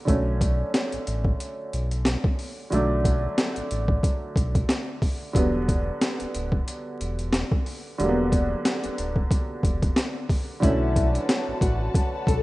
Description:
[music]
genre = hip hop, boom-bap hip-hop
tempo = 91 BPM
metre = 4/4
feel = swing 56% on 16ths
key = B minor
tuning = A4 = 440 Hz
[part]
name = warm upright piano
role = accompaniment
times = 0.0-12.4 s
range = D3 to D4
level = -28 LUFS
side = right 1 dB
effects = cassette tape, high-pass filter, low-pass filter
[part]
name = sub bass with octave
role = bass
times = 0.1-12.4 s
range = D1 to B1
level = -27 LUFS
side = equal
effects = none
[part]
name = boom bap sampler-style drum kit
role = drums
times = 0.1-12.4 s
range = hi-hat, kick drum, snare drum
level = -24 LUFS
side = equal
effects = overdrive
[part]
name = nylon-string guitar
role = melody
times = 10.6-12.4 s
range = D4 to A4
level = -29 LUFS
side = left 4 dB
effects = high-pass filter, low-pass filter
[part]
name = warm studio string section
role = sustained chords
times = 10.6-12.4 s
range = F#4 to A5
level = -33 LUFS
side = left 2 dB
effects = high-pass filter, low-pass filter
[sound]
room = light reverb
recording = rough home demo mix, vinyl crackle, nothing above 10.4 kHz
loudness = -22 LUFS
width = side -19 dB against mid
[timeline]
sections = 0.0-10.6 A section; 10.6-12.4 B section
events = none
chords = 0.1 Bm7; 5.3 Em7; 10.6 Bm7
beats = | 0.08 0.73 1.39 2.05 | 2.71 3.37 4.03 4.69 | 5.35 6.01 6.67 7.33 | 7.99 8.65 9.31 9.97 | 10.62 11.28 11.94

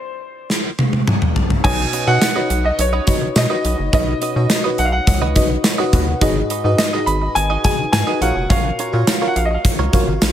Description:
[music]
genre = 1980s-style pop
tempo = 105 BPM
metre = 4/4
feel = straight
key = unclear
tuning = A4 = 440 Hz
[part]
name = clear grand piano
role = melody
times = 0.0-9.6 s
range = C5 to Cb6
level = -21 LUFS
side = equal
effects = digital delay
[part]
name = gated 80s drum kit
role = drums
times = 0.5-10.3 s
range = crash cymbal, hi-hat, kick drum, snare drum, tambourine, toms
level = -17 LUFS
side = equal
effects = none
[part]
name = FM electric piano with soft pad layer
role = accompaniment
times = 1.6-10.3 s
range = Ab2 to Gb5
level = -22 LUFS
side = left 1 dB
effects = chorus
[part]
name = direct-recorded clean electric guitar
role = riff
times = 1.6-10.3 s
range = Db4 to Eb5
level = -27 LUFS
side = right 7 dB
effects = wide subtle chorus
[part]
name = rubbery square bass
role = bass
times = 1.6-10.3 s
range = F1 to Cb3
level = -19 LUFS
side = equal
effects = none
[sound]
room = light reverb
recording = none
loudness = -15 LUFS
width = side -10 dB against mid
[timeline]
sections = 0.0-1.6 A section; 1.6-10.3 A section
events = stop 0.0-1.6; drum fill 0.5-1.6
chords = 0.0 N.C.; 1.6 Cbadd9; 6.2 Abm7; 8.2 Gbmaj7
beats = 0.50 1.07 | 1.65 2.22 2.79 3.36 | 3.93 4.50 5.08 5.65 | 6.22 6.79 7.36 7.93 | 8.50 9.07 9.65 10.22

